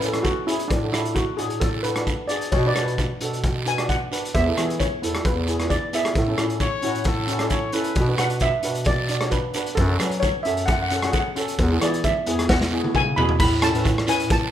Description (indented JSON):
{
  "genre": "calypso",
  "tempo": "132 BPM",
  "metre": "4/4",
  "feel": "straight",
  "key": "A major",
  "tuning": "A4 = 440 Hz",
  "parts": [
    { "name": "steel pan", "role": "melody", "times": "0.0-14.5 s", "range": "D4 to B5", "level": "-26 LUFS", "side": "equal", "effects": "none" },
    { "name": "steel pan", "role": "accompaniment", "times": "0.0-14.4 s", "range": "B3 to D5", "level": "-28 LUFS", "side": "equal", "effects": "none" },
    { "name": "mellow bass clarinet", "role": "bass", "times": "0.0-14.5 s", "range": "E2 to F#3", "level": "-26 LUFS", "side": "equal", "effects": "none" },
    { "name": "raw garage drum kit", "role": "drums", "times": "0.0-14.4 s", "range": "crash cymbal, hi-hat, kick drum, rim click, snare drum, toms", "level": "-24 LUFS", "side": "equal", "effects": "none" },
    { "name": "guiro", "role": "percussion", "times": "0.2-14.5 s", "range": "none", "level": "-34 LUFS", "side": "right 6 dB", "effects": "none" },
    { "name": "clear trumpet", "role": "second line", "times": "6.6-8.1 s", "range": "A4 to C#5", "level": "-28 LUFS", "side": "left 5 dB", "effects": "none" }
  ],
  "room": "light reverb",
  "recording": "minimal, uncompressed stereo recording",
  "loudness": "-20 LUFS",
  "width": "side -10 dB against mid",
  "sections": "0.0-13.4 A section; 13.4-14.5 B section",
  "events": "steel pan solo 0.0-13.4; drum fill 12.5-13.4",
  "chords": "0.0 A; 0.7 D/A; 2.5 Bm; 4.3 Esus4; 5.2 E; 6.2 A; 8.0 Bm; 9.8 F#m; 11.6 Eadd9; 13.4 A",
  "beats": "0.25 | 0.70 1.16 1.61 2.06 | 2.52 2.97 3.42 3.88 | 4.33 4.79 5.24 5.70 | 6.15 6.60 7.06 7.51 | 7.96 8.42 8.87 9.32 | 9.78 10.23 10.69 11.14 | 11.59 12.04 12.50 12.95 | 13.40 13.85 14.30"
}